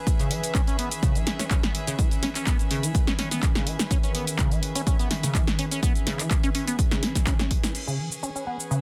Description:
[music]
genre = acid house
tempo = 125 BPM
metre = 4/4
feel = straight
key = C# minor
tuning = A4 = 439 Hz
[part]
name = warbly tape-like pad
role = sustained chords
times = 0.0-8.8 s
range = D#3 to B4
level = -37 LUFS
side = equal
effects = chorus, built-in reverb, phaser, sidechain pumping
[part]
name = dark studio string section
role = texture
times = 0.0-8.8 s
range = C#4 to E6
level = -39 LUFS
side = equal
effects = sidechain pumping
[part]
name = electronic kick drum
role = drums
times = 0.1-7.6 s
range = none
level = -26 LUFS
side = equal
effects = none
[part]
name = punchy analog drum machine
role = drums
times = 0.1-8.8 s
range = crash cymbal, handclaps, hi-hat, shaker, snare drum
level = -32 LUFS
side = equal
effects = none
[part]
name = liquid acid bass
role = riff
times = 0.2-8.8 s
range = C#3 to C#4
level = -32 LUFS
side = equal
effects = phaser, analog chorus, sidechain pumping
[sound]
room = light reverb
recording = dense, heavily limited modern master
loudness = -25 LUFS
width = mono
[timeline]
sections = 0.0-7.7 A section; 7.7-8.8 B section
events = none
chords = 0.0 C#m7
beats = | 0.07 0.55 1.03 1.51 | 1.99 2.47 2.95 3.43 | 3.91 4.39 4.87 5.35 | 5.83 6.31 6.79 7.27 | 7.75 8.23 8.71

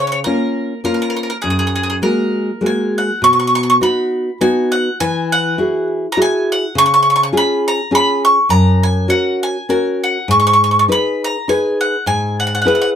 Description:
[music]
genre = italian folk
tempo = 102 BPM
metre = 3/4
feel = swing 54% on 8ths, rubato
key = F# major, B major from 3.2 s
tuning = A4 = 440 Hz
[part]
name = bowl-back mandolin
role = melody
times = 0.0-12.9 s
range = G#4 to C#6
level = -15 LUFS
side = equal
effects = none
[part]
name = nylon-string guitar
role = accompaniment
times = 0.0-13.0 s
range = F#2 to B4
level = -16 LUFS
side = left 1 dB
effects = none
[sound]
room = little or no reverb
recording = dry, close 1970s-style studio recording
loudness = -13 LUFS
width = side -9 dB against mid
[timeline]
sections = 0.0-3.2 A section; 3.2-13.0 B section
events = none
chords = 0.0 C#6; 1.4 F#add9; 3.2 B; 5.0 Eadd9; 6.8 C#; 8.5 F#; 10.3 G#m; 12.1 E/G#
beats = 0.26 0.84 | 1.43 2.01 2.61 | 3.21 3.81 4.41 | 5.00 5.59 6.17 | 6.75 7.33 7.92 | 8.50 9.09 9.68 | 10.28 10.88 11.47 | 12.06 12.65

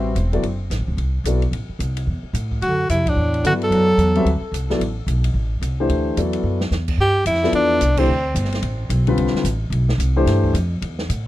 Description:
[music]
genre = modal jazz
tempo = 220 BPM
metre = 4/4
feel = swing 61% on 8ths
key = D mixolydian, G mixolydian from 7.0 s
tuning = A4 = 441 Hz
[part]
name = warm concert grand piano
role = accompaniment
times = 0.0-1.4, 3.4-10.5 s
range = D3 to E5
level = -21 LUFS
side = left 3 dB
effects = none
[part]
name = upright bass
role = bass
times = 0.0-11.3 s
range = D1 to A2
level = -20 LUFS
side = equal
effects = none
[part]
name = open jazz drum kit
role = drums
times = 0.2-11.2 s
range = crash cymbal, hi-hat, kick drum, ride cymbal, snare drum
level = -30 LUFS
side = equal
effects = none
[part]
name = bright tenor saxophone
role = melody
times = 2.6-4.4, 7.0-8.4 s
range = C4 to A4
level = -20 LUFS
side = equal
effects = tape echo
[part]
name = breathy bass clarinet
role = second line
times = 2.6-4.4 s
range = A2 to F#3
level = -21 LUFS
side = right 2 dB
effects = none
[sound]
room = light reverb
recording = dry, close 1970s-style studio recording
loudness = -17 LUFS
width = side -15 dB against mid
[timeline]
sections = 0.0-7.0 A section; 7.0-11.3 B section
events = band accent 3.0, 7.9; drum fill 6.4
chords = 0.0 D9; 7.0 G13sus4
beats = 0.16 | 0.43 0.71 0.98 1.25 | 1.53 1.80 2.07 2.35 | 2.62 2.89 3.17 3.44 | 3.71 3.99 4.26 4.53 | 4.81 5.08 5.35 5.63 | 5.90 6.17 6.45 6.72 | 6.99 7.27 7.54 7.81 | 8.09 8.36 8.63 8.90 | 9.18 9.45 9.72 10.00 | 10.27 10.54 10.82 11.09

